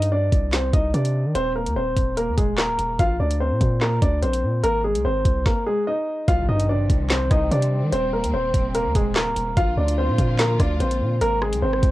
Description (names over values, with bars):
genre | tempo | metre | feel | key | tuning
hip hop, drill | 146 BPM | 4/4 | half-time | C minor | A4 = 440 Hz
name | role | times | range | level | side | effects
dark baby grand piano | melody | 0.0-11.9 s | Ab3 to F5 | -23 LUFS | equal | cassette tape
long sustained 808-style bass | bass | 0.0-11.9 s | D1 to Eb3 | -23 LUFS | equal | none
drill drum kit | drums | 0.0-11.9 s | handclaps, hi-hat, kick drum, rim click, snare drum | -22 LUFS | equal | none
warm studio string section | sustained chords | 6.3-11.9 s | C3 to F4 | -31 LUFS | equal | cassette tape
impact | sound effects | 6.4-7.9 s | none | -34 LUFS | equal | none
room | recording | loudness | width
little or no reverb | home recording on cassette | -19 LUFS | side -16 dB against mid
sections
0.0-6.3 A section; 6.3-11.9 B section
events
stop 5.5-6.3; impact 6.3-7.9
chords
0.0 Cm; 1.4 Eb5; 3.0 Bb; 4.6 Ab; 6.3 Cm; 7.9 Eb6; 9.6 Bb; 11.2 Ab